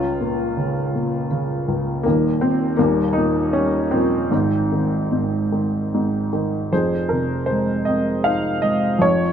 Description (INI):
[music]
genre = classical, lyrical solo piano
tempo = 78 BPM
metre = 3/4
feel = uneven beats, rubato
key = Ab major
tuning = A4 = 440 Hz
[part]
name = dark upright piano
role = solo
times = 0.0-9.3 s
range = Eb1 to F5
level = -18 LUFS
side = equal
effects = none
[sound]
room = moderate studio reverb, RT60 0.5 s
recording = none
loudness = -18 LUFS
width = side -8 dB against mid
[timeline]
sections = 0.0-6.7 A section; 6.7-9.3 B section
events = none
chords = 0.0 Bbm/Db; 2.0 Eb5; 2.8 Ebadd9; 4.3 Ab6; 6.7 Fm7